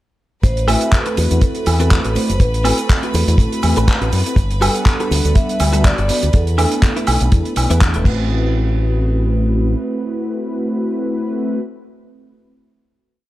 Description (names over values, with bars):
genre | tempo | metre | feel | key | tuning
nu-disco, nu disco | 122 BPM | 4/4 | swing 55% on 16ths | A dorian | A4 = 440 Hz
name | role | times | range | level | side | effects
vibraphone with soft mallets | melody | 0.4-7.3 s | A4 to E5 | -25 LUFS | right 2 dB | analog delay
clear studio violin section | sustained chords | 0.4-8.1 s | B4 to B5 | -30 LUFS | right 1 dB | sidechain pumping
fingered electric bass with an envelope filter | bass | 0.4-9.7 s | E1 to F#2 | -17 LUFS | equal | tube saturation, sidechain pumping
damped 70s drum kit | drums | 0.4-8.2 s | crash cymbal, handclaps, hi-hat, shaker, woodblock | -21 LUFS | right 1 dB | studio reverb
kick drum | drums | 0.4-8.2 s | none | -13 LUFS | equal | studio reverb
mellow synth brass | accompaniment | 0.7-11.6 s | G3 to F#5 | -22 LUFS | equal | chorus, cassette tape
direct-recorded clean electric guitar | riff | 0.7-11.6 s | C4 to D5 | -27 LUFS | left 2 dB | ensemble chorus
room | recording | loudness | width
studio reverb | none | -14 LUFS | side -16 dB against mid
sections
0.4-8.3 drop; 8.3-12.2 final hit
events
drop 0.4-8.3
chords
0.4 Am69; 4.4 Gmaj9; 6.3 E7sus4; 8.1 Am69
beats
| 0.44 0.93 1.42 1.91 | 2.40 2.90 3.39 3.88 | 4.37 4.86 5.36 5.85 | 6.34 6.83 7.32 7.81 | 8.31 8.80 9.29 9.78 | 10.27 10.77 11.26